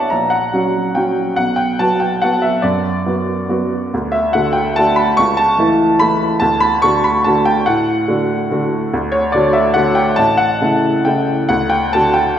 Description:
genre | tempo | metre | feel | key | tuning
classical, piano waltz | 142 BPM | 3/4 | uneven beats, rubato | D major from 8.9 s | A4 = 440 Hz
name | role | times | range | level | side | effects
clear upright piano | solo | 0.0-12.4 s | A1 to C#6 | -13 LUFS | equal | none
room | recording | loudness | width
wet concert hall reverb, RT60 1.7 s | none | -13 LUFS | side -9 dB against mid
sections
0.0-12.4 A section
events
none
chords
0.1 F#/A#; 1.4 Bm; 3.9 D; 5.2 A/C#; 6.4 D; 10.2 A; 11.5 D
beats
| 0.11 0.53 0.96 | 1.38 1.80 2.23 | 2.64 3.05 3.49 | 3.92 4.34 4.76 | 5.18 5.58 6.00 | 6.42 6.83 7.26 | 7.66 8.08 8.51 | 8.92 9.34 9.76 | 10.19 10.62 11.07 | 11.50 11.93 12.37

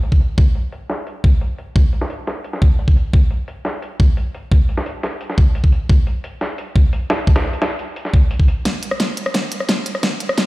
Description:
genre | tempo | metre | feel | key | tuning
drum and bass | 174 BPM | 4/4 | straight | none | none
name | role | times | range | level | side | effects
dusty soul sampler-style drum kit | drums | 0.0-8.6 s | hi-hat, snare drum | -25 LUFS | equal | high-pass filter on hats, low-pass filter on hats, high-pass filter on snare, low-pass filter on snare
electronic kick drum | drums | 0.1-10.4 s | none | -13 LUFS | equal | high-pass filter on kick
pop drum kit | drums | 8.7-10.4 s | hi-hat, rim click, snare drum | -18 LUFS | equal | high-pass filter on hats, high-pass filter on snare, high-pass filter on cymbals
room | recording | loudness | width
digital ambience | played on a big sound system in a bare room, stone room reverb | -15 LUFS | side -19 dB against mid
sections
0.0-8.7 A section; 8.7-10.5 B section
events
build-up 8.7-10.5; drum fill 8.7-10.5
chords
none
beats
0.03 | 0.38 0.72 1.07 1.41 | 1.76 2.10 2.45 2.79 | 3.14 3.48 3.83 4.17 | 4.52 4.86 5.21 5.55 | 5.89 6.24 6.58 6.93 | 7.28 7.62 7.96 8.31 | 8.65 9.00 9.34 9.69 | 10.03 10.38

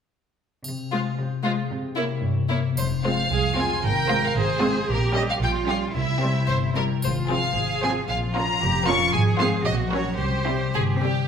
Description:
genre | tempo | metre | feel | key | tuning
cinematic, playful, whimsical film cue | 113 BPM | 2/4 | straight | F minor | A4 = 441 Hz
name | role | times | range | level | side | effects
rich chamber cello section | bass | 0.6-11.0 s | G2 to Bb4 | -29 LUFS | right 3 dB | none
triangle | percussion | 0.6-3.8, 7.0-8.0 s | none | -38 LUFS | right 2 dB | none
concert harp | arpeggios | 0.7-11.3 s | F2 to Db5 | -27 LUFS | left 7 dB | none
rich chamber violin section | melody | 0.9-10.7 s | Bb4 to Db6 | -26 LUFS | left 1 dB | none
rich chamber violin section | second line | 0.9-11.3 s | E4 to C5 | -31 LUFS | left 1 dB | none
rich chamber viola section | accompaniment | 0.9-11.2 s | F3 to Db4 | -30 LUFS | right 2 dB | none
rich studio double bass section | bass | 2.8-11.2 s | F1 to C2 | -27 LUFS | right 4 dB | none
room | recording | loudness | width
moderate scoring stage reverb, RT60 1.6 s | minimal, uncompressed stereo recording | -21 LUFS | side -7 dB against mid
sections
0.7-2.8 A section; 2.8-11.3 B section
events
none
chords
0.7 Fm/C; 1.7 C7b9; 2.8 Fm; 3.8 Fm/Ab; 4.9 Gdim/Bb; 6.0 C; 7.0 Fm/Ab; 8.1 Bbm; 9.1 Fm/Ab; 9.7 Gb/Bb; 10.2 C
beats
| 0.65 1.18 | 1.71 2.23 | 2.78 3.31 | 3.84 4.36 | 4.88 5.41 | 5.95 6.49 | 7.03 7.56 | 8.09 8.61 | 9.13 9.66 | 10.20 10.74

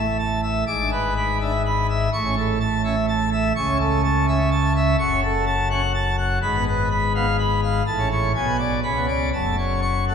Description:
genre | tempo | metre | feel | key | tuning
classical, organ toccata | 125 BPM | 3/4 | straight | A major, F# minor from 5.0 s | A4 = 440 Hz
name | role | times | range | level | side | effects
pipe organ, plenum | solo | 0.0-10.1 s | F#1 to D6 | -19 LUFS | equal | none
room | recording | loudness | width
wet church reverb, RT60 3.6 s | minimal, uncompressed stereo recording | -19 LUFS | side -7 dB against mid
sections
0.0-10.1 A section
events
none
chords
0.0 A5; 0.7 E7/G#; 2.1 A; 3.6 A/C#; 5.0 F#m; 6.4 Fdim/Ab; 7.9 A; 8.3 G#dim/B; 8.8 Bmadd9/C#; 9.3 F#m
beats
0.20 | 0.68 1.16 1.64 | 2.12 2.60 3.08 | 3.56 4.04 4.51 | 4.99 5.47 5.95 | 6.43 6.91 7.38 | 7.87 8.35 8.84 | 9.33 9.83

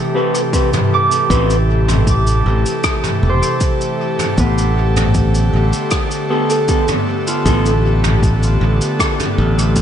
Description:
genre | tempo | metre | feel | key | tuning
ambient dub | 78 BPM | 4/4 | straight | unclear | A4 = 437 Hz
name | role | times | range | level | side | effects
airy breathy pad | sustained chords | 0.0-9.8 s | C3 to A4 | -19 LUFS | equal | chorus
mellow electric guitar | stabs | 0.1-1.6, 6.3-7.7 s | B3 to B4 | -21 LUFS | left 1 dB | dub echo
soft brush drum kit | drums | 0.3-9.8 s | cabasa, rim click, toms | -21 LUFS | equal | dub echo
electronic kick drum | drums | 0.5-9.8 s | none | -19 LUFS | equal | none
Celtic harp | arpeggios | 0.9-9.8 s | B3 to D6 | -22 LUFS | right 2 dB | dub echo
modern bright fingered electric bass | bass | 1.3-9.8 s | E1 to A1 | -14 LUFS | equal | none
room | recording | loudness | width
light reverb, studio reverb | nothing above 10.9 kHz | -13 LUFS | side -9 dB against mid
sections
0.0-9.8 A section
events
none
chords
0.0 Am7; 4.4 Gadd9/A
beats
0.53 | 1.30 2.07 2.84 3.61 | 4.38 5.15 5.92 6.69 | 7.46 8.23 8.99 9.76

